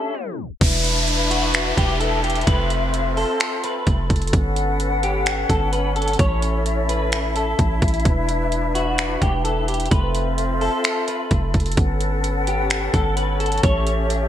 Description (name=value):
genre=hip hop, atmospheric cloud-rap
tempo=129 BPM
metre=4/4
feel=half-time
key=E dorian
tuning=A4 = 440 Hz
part: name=clean electric guitar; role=melody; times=0.0-14.3 s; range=F#4 to C#5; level=-26 LUFS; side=equal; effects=ensemble chorus, digital delay
part: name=large flute ensemble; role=sustained chords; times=0.0-14.3 s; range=C4 to F#5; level=-24 LUFS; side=left 3 dB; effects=sidechain pumping
part: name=mallet-like synth pluck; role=arpeggios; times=0.0-0.6 s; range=A3 to C#5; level=-37 LUFS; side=left 2 dB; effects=chorus, phaser, digital delay
part: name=warm 808-style bass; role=bass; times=0.6-14.3 s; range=E1 to A1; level=-22 LUFS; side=equal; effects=none
part: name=trap drum kit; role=drums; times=0.6-14.2 s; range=crash cymbal, finger snaps, hi-hat, kick drum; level=-22 LUFS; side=equal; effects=vintage 12-bit sampler grit, gated reverb
part: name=downlifter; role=sound effects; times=0.6-4.3 s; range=none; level=-25 LUFS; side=right 1 dB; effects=none
room=light reverb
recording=bright 1980s-style digital production, low-pass filter, tape stop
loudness=-18 LUFS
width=side -10 dB against mid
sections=0.6-14.3 A section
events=tape stop 0.1-0.6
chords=0.0 A7; 0.6 E5; 2.5 Fmaj7; 4.3 Gmaj9#11; 6.2 A; 8.1 E5; 9.9 Fmaj7; 11.8 Gmaj9#11; 13.6 A7